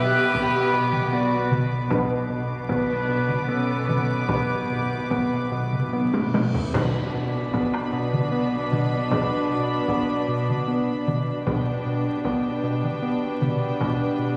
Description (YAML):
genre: cinematic, suspense film score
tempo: 76 BPM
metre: 3/4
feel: straight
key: B minor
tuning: A4 = 440 Hz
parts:
  - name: rich studio violin section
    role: melody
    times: 0.0-14.4 s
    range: G5 to D6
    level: -39 LUFS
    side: equal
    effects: none
  - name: dark clarinet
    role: second line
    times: 0.0-5.9 s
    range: G4 to E5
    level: -34 LUFS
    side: equal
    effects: none
  - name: dark studio violin section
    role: second line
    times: 0.0-14.4 s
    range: B3 to B4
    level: -36 LUFS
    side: equal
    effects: none
  - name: dark studio viola section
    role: accompaniment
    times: 0.0-14.4 s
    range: B3 to B4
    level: -30 LUFS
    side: equal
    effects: none
  - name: rubbery square bass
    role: riff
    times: 0.0-14.4 s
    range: B2 to B3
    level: -30 LUFS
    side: equal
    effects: none
  - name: dark studio double bass section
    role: bass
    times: 0.0-14.4 s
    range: B1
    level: -36 LUFS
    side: equal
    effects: none
  - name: warm studio cello section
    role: bass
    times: 0.0-14.4 s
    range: B2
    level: -37 LUFS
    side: equal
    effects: none
  - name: taiko ensemble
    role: drums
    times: 0.3-14.4 s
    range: none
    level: -30 LUFS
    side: equal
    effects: none
  - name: clear trombone section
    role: sustained chords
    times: 1.9-14.4 s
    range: B2 to B3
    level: -36 LUFS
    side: equal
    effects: none
  - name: dark French horn section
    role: sustained chords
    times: 1.9-14.4 s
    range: D4 to B4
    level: -37 LUFS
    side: equal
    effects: none
  - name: timpani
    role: percussion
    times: 1.9-7.9 s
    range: B2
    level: -37 LUFS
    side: equal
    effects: none
  - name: cymbal swell, clash cymbals and concert bass drum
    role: percussion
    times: 4.3-8.3 s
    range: none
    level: -43 LUFS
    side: equal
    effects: none
  - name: reverse cymbal and impact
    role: sound effects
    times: 6.4-9.1 s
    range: none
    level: -41 LUFS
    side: equal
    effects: none
room: wet scoring stage reverb, RT60 2.0 s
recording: vinyl crackle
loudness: -24 LUFS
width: mono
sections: 0.0-6.7 A section; 6.7-14.4 B section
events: timpani fill 1.9-6.7; drum fill 6.1-6.7; reverse cymbal 6.4-6.7; band accent 6.7-7.5; impact 6.7-9.1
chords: 0.0 Bm; 11.5 G/B